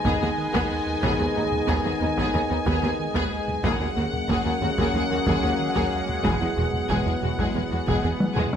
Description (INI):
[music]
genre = cinematic, hybrid orchestral and electronic film score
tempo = 92 BPM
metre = 4/4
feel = straight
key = unclear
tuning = A4 = 441 Hz
[part]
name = warm symphonic violin section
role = melody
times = 0.0-8.6 s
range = Gb5 to Ab5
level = -30 LUFS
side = left 2 dB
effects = none
[part]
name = warm symphonic violin section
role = second line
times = 0.0-8.5 s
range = Eb4 to Ab4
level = -32 LUFS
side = left 2 dB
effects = none
[part]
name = rich symphonic viola section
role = accompaniment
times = 0.0-8.5 s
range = G#3 to Cb4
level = -31 LUFS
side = right 1 dB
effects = none
[part]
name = dark French horn section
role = sustained chords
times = 0.0-8.5 s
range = Bb3 to E4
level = -32 LUFS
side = left 7 dB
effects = none
[part]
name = sweeping resonant pad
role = sustained chords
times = 0.0-8.6 s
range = Ab3 to Gb5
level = -32 LUFS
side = equal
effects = chorus
[part]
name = warm trombone section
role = sustained chords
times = 0.0-8.5 s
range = Eb3 to Ab3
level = -33 LUFS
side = right 4 dB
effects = none
[part]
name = thumb-piano-like synth pluck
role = arpeggios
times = 0.0-8.5 s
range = E3 to Ab4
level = -37 LUFS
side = right 6 dB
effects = none
[part]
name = round analog bass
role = riff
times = 0.0-8.6 s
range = Eb2 to E3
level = -32 LUFS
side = right 2 dB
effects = none
[part]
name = rich symphonic double bass section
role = bass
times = 0.1-7.9 s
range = E1 to Eb2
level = -31 LUFS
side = right 2 dB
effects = none
[part]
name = warm symphonic cello section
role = bass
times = 0.1-8.4 s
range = Eb2 to E2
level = -30 LUFS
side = right 1 dB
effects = none
[part]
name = solo taiko drums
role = drums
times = 0.1-8.6 s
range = none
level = -30 LUFS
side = left 1 dB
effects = none
[sound]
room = light reverb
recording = close, detailed microphones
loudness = -22 LUFS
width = side -8 dB against mid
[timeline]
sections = 0.0-8.6 A section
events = drum fill 8.2-8.6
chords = 0.0 Abm/Eb; 3.6 Gbadd9/Eb; 6.2 Eadd9